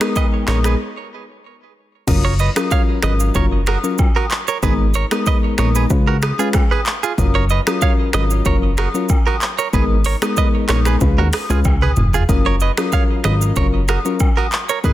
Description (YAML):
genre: afrobeats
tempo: 94 BPM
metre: 4/4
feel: straight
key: F# major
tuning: A4 = 440 Hz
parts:
  - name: soft electric-piano-like synth keys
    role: accompaniment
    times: 0.0-14.9 s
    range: F#3 to B4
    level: -22 LUFS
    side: left 3 dB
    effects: chorus
  - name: afro-pop drum kit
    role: drums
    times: 0.0-14.9 s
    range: crash cymbal, finger snaps, handclaps, hi-hat, kick drum, rim click, shaker, toms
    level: -18 LUFS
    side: equal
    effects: soft clipping on snare
  - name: agogo bells and woodblock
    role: percussion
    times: 0.0-14.9 s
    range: none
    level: -28 LUFS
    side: left 2 dB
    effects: none
  - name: direct-recorded clean electric guitar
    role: riff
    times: 0.2-14.9 s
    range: E#4 to E#5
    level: -23 LUFS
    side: right 7 dB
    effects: warbly pitch drift, digital delay
  - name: plucky analog bass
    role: bass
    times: 0.5-14.9 s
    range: E#1 to D#2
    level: -17 LUFS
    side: equal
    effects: none
room: light reverb, digital ambience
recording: dense, heavily limited modern master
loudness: -14 LUFS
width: side -14 dB against mid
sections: 0.0-2.1 A section; 2.1-14.9 B section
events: break 0.8-2.1; drum fill 11.7-12.3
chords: 0.0 G#madd9; 0.8 N.C.; 2.1 F#maj7; 4.6 G#madd9; 5.9 C#7; 7.2 F#maj7; 9.7 G#madd9; 11.0 C#7; 12.3 F#maj7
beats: 0.16 0.80 1.44 | 2.08 2.71 3.35 3.99 | 4.63 5.27 5.91 6.54 | 7.18 7.82 8.46 9.10 | 9.73 10.37 11.01 11.65 | 12.29 12.93 13.56 14.20 | 14.84